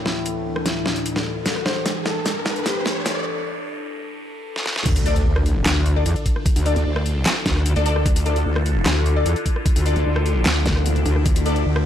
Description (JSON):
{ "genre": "heavy wobble dubstep", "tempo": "150 BPM", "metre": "4/4", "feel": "half-time", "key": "D minor", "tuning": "A4 = 444 Hz", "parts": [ { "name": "evolving wavetable pad", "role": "sustained chords", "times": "0.0-11.9 s", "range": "C2 to A4", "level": "-28 LUFS", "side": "left 2 dB", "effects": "phaser, built-in reverb, sidechain pumping" }, { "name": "riser, impact and zap", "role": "sound effects", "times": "0.6-6.5, 10.7-10.8 s", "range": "none", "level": "-28 LUFS", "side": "equal", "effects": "none" }, { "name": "dark grand piano", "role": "melody", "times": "0.1-3.2 s", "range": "E4 to C5", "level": "-29 LUFS", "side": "left 3 dB", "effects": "low-pass filter, tape echo" }, { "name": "dubstep drum kit", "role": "drums", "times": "0.1-11.8 s", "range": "crash cymbal, handclaps, hi-hat, rim click, snare drum", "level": "-24 LUFS", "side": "equal", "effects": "overdrive, studio reverb" }, { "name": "wobble bass", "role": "bass", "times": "4.9-11.9 s", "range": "D2", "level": "-20 LUFS", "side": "equal", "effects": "chorus, overdrive" }, { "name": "electronic kick drum", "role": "drums", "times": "4.9-11.3 s", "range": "none", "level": "-20 LUFS", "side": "equal", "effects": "overdrive, studio reverb" }, { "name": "orchestra-hit-like synth stab", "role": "stabs", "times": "5.1-11.6 s", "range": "D4 to D5", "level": "-27 LUFS", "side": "left 2 dB", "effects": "built-in reverb, phaser, tape echo" }, { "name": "metallic wobble bass", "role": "bass", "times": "5.7-11.2 s", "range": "D2 to E2", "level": "-18 LUFS", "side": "equal", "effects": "chorus, overdrive" } ], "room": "light reverb, digital ambience", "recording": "dark, warm production, high-pass filter", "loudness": "-18 LUFS", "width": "side -10 dB against mid", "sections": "0.0-4.9 A section; 4.9-11.9 B section", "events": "build-up 0.0-4.9; drum fill 0.0-3.3, 4.6; riser 0.6-3.3; filter sweep on grand piano 0.0-4.9; filter sweep 0.0-4.9; break 3.3-4.9; drop 4.9-11.9; impact 4.9-6.5", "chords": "0.0 Dsus2; 1.7 C6; 4.9 Dmadd9" }